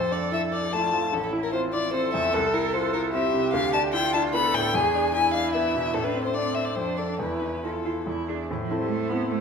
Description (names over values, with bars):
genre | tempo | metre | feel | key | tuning
quick classical-period movement for piano trio | 148 BPM | 3/4 | rubato | A minor from 3.5 s | A4 = 440 Hz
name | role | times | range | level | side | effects
warm violin | melody | 0.0-9.4 s | A4 to B5 | -26 LUFS | left 4 dB | none
warm cello | second line | 0.0-9.4 s | E3 to A4 | -29 LUFS | right 7 dB | none
bright grand piano | accompaniment | 0.0-9.4 s | A1 to A4 | -28 LUFS | equal | none
room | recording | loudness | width
wet recital hall reverb, RT60 1.5 s | minimal, uncompressed stereo recording | -23 LUFS | side -6 dB against mid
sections
0.0-8.5 A section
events
none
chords
0.0 Dm/F; 1.1 Am; 2.3 Am/C; 3.5 Bm7b5/D; 4.7 E7; 5.9 Am; 6.8 Dm/F; 7.2 Esus4; 8.1 E; 8.5 Am